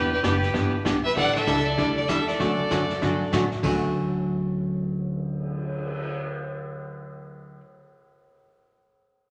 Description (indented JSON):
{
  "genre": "country, western swing",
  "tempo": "194 BPM",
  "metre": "4/4",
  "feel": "swing 61% on 8ths",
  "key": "D major",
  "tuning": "A4 = 438 Hz",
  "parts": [
    { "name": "clear fiddle", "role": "melody", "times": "0.0-3.3 s", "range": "B4 to F#5", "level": "-30 LUFS", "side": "equal", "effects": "none" },
    { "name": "clear fiddle", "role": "second line", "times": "0.0-3.3 s", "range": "G4 to D5", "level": "-31 LUFS", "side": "equal", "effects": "none" },
    { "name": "archtop guitar, miked and amplified", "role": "accompaniment", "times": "0.0-7.6 s", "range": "D3 to A4", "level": "-28 LUFS", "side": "equal", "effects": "none" },
    { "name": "upright bass", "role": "bass", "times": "0.0-7.6 s", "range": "E1 to A2", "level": "-35 LUFS", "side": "equal", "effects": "none" },
    { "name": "jazz brush drum kit", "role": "drums", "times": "0.2-6.0 s", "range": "brushed snare drum, crash cymbal, cymbal swell, hi-hat, kick drum, snare drum", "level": "-37 LUFS", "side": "equal", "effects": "none" }
  ],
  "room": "wet large studio reverb, RT60 1.3 s",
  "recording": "none",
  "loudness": "-25 LUFS",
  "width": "mono",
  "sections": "0.0-3.6 A section; 3.6-6.1 B section",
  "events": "none",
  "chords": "0.0 Em7; 1.2 A7sus4; 2.4 Dmaj7",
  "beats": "0.24 0.55 0.86 | 1.17 1.47 1.78 2.09 | 2.40 2.71 3.02 3.33 | 3.63 3.94 4.25 4.56 | 4.87 5.17 5.48 5.79"
}